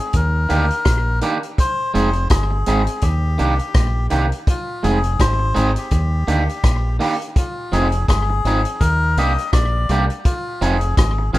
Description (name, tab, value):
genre	roots reggae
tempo	83 BPM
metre	4/4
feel	swing 57% on 16ths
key	F dorian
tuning	A4 = 444 Hz
part	melodica	melody	0.0-11.4 s	F4 to Eb5	-23 LUFS	left 3 dB	tape echo
part	deep dub fingered electric bass	bass	0.1-11.4 s	F1 to Eb2	-19 LUFS	equal	none
part	vintage drum kit	drums	0.1-11.4 s	hi-hat, kick drum, rim click	-19 LUFS	equal	none
part	electric guitar at the edge of break-up	accompaniment	0.5-11.4 s	Eb3 to Ab4	-22 LUFS	right 3 dB	tape echo
room	moderate studio reverb, RT60 0.5 s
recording	rough home demo mix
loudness	-16 LUFS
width	side -17 dB against mid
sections	0.0-11.4 A section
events	none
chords	0.1 Ebmaj7; 1.6 Fm7; 3.0 Ebmaj7; 4.5 Fm7; 5.9 Ebmaj7; 7.4 Fm7; 8.8 Ebmaj7; 10.2 Fm7